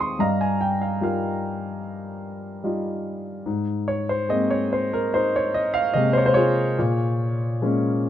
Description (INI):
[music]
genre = classical, lyrical solo piano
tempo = 72 BPM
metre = 4/4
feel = rubato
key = unclear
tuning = A4 = 439 Hz
[part]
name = warm concert grand piano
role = solo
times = 0.0-8.1 s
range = Eb2 to Eb6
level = -21 LUFS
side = equal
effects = none
[sound]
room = light reverb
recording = nothing above 11.0 kHz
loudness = -20 LUFS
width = side -11 dB against mid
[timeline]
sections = 0.0-8.1 A section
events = none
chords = 0.2 Ebadd9/G; 3.5 Abadd9; 6.8 Bbm7